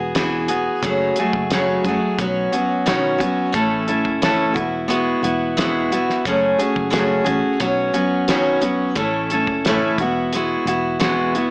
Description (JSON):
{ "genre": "folk rock and heartland rock", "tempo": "88 BPM", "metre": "4/4", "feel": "straight", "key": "unclear", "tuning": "A4 = 441 Hz", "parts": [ { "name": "picked steel-string acoustic guitar", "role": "accompaniment", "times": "0.0-11.5 s", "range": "F#2 to A4", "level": "-20 LUFS", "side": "equal", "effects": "none" }, { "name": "fingered electric bass", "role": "bass", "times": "0.0-11.5 s", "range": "E1 to F#2", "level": "-32 LUFS", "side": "equal", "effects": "none" }, { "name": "cloth-damped thuddy drum kit", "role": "drums", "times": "0.1-11.5 s", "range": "hi-hat, kick drum, snare drum", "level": "-28 LUFS", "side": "equal", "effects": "none" } ], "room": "moderate echo chamber reverb, RT60 2.1 s", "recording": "small speaker sound", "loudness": "-19 LUFS", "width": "mono", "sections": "0.0-11.5 A section", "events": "none", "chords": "0.0 Eadd9; 0.8 F#madd9; 2.2 Badd9; 3.5 A; 4.6 Eadd9; 6.3 F#madd9; 7.6 Badd9; 9.0 A; 10.0 Eadd9" }